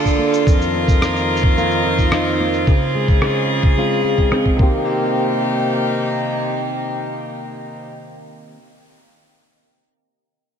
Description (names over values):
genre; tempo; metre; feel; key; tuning
folktronica; 109 BPM; 4/4; straight; unclear; A4 = 437 Hz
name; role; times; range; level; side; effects
warm string quartet; sustained chords; 0.0-7.8 s; C3 to Bb4; -20 LUFS; left 1 dB; none
fingerpicked plugged-in steel-string acoustic guitar; arpeggios; 0.0-8.6 s; F2 to A4; -21 LUFS; right 1 dB; analog chorus, low-pass filter, analog delay
electronic kick drum; drums; 0.1-4.7 s; none; -15 LUFS; equal; none
electronic shaker and rim click; drums; 0.1-4.6 s; none; -27 LUFS; equal; low-pass filter on hats, low-pass filter on perc, low-pass filter on snare
room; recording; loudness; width
wet lush hall reverb, RT60 2.8 s; dreamy mix soaked in reverb; -15 LUFS; side -8 dB against mid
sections
0.0-4.9 A section; 4.9-7.1 B section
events
filter sweep on drum 0.0-4.9; filter sweep on steel-string acoustic guitar 0.0-4.9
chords
0.5 F7sus4; 2.7 Dbmaj7; 4.6 Eb6